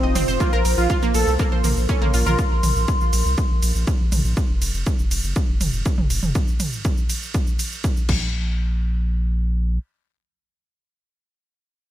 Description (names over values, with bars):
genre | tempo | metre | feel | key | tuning
melodic techno | 121 BPM | 4/4 | straight | unclear | A4 = 440 Hz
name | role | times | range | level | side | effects
wide unison lead | melody | 0.0-2.4 s | C4 to A4 | -25 LUFS | right 1 dB | sidechain pumping, digital delay
analog pluck | arpeggios | 0.0-2.3 s | Bb3 to Eb6 | -26 LUFS | right 2 dB | chorus, sidechain pumping, ping-pong delay
round analog bass | bass | 0.0-9.8 s | F1 to C2 | -22 LUFS | equal | sidechain pumping
warbly tape-like pad | texture | 0.0-4.4 s | F4 to C6 | -28 LUFS | left 1 dB | chorus, built-in reverb, sidechain pumping
techno drum kit | drums | 0.2-8.2 s | crash cymbal, hi-hat, ride cymbal, shaker, toms | -27 LUFS | right 1 dB | overdrive, studio reverb
electronic kick drum | drums | 0.4-8.2 s | none | -21 LUFS | equal | overdrive, studio reverb
room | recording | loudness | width
digital ambience | bright 1980s-style digital production | -18 LUFS | side -13 dB against mid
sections
0.0-8.3 A section; 8.3-11.9 B section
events
drop 0.0-8.3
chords
0.4 Bbsus2; 4.4 N.C.